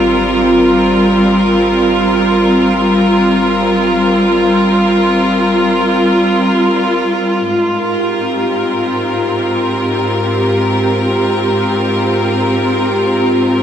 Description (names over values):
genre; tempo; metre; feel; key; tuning
ambient; free time; none; none; Ab major; A4 = 440 Hz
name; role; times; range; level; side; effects
rich symphonic string section; sustained chords; 0.0-13.6 s; Ab2 to Bb4; -11 LUFS; equal; none
warm sub bass; bass; 0.0-7.4 s; Ab1; -31 LUFS; equal; none
room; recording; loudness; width
wet huge ambient reverb, RT60 9.1 s; none; -11 LUFS; side -9 dB against mid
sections
0.0-7.5 A section; 7.5-13.6 B section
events
fade-out on sub bass 0.0-7.5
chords
0.0 Abmaj13